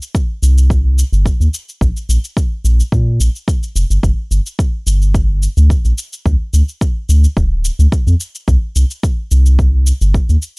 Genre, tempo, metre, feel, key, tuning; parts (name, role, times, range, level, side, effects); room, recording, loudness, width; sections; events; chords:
organic downtempo; 108 BPM; 4/4; straight; A4 = 440 Hz
cabasa; drums; 0.0-10.5 s; -26 LUFS; left 1 dB
electronic kick drum; drums; 0.1-10.3 s; -15 LUFS; equal
round analog bass; bass; 0.4-10.4 s; D1 to Bb2; -11 LUFS; equal
little or no reverb; dry, gritty hardware recording; -12 LUFS; side -38 dB against mid
0.0-10.6 A section